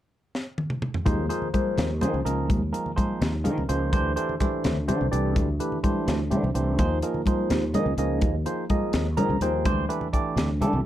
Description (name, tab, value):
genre	electric jazz fusion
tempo	84 BPM (dotted quarters)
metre	6/8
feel	straight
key	unclear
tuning	A4 = 440 Hz
part	tight funk drum kit	drums	0.3-10.7 s	hi-hat, kick drum, snare drum, toms	-28 LUFS	equal	none
part	barky tine electric piano	accompaniment	1.1-10.8 s	E3 to Bb5	-27 LUFS	right 1 dB	overdrive, phaser
part	sustaining fretless electric bass	bass	1.1-10.8 s	C2 to Eb3	-26 LUFS	equal	ensemble chorus
part	congas	percussion	1.1-10.8 s	none	-30 LUFS	left 1 dB	none
room	moderate club reverb, RT60 0.5 s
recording	dark, warm production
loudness	-23 LUFS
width	side -12 dB against mid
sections	0.0-1.1 A section; 1.1-10.9 B section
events	drum fill 0.3-1.1; tine electric piano fill 8.9-9.7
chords	0.0 N.C.; 1.1 Eb13sus4; 3.9 D9sus4; 6.8 Eb13sus4; 9.7 D13sus4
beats	0.35 | 1.06 1.78 | 2.49 3.21 | 3.92 4.64 | 5.36 6.07 | 6.79 7.50 | 8.22 8.94 | 9.65 10.37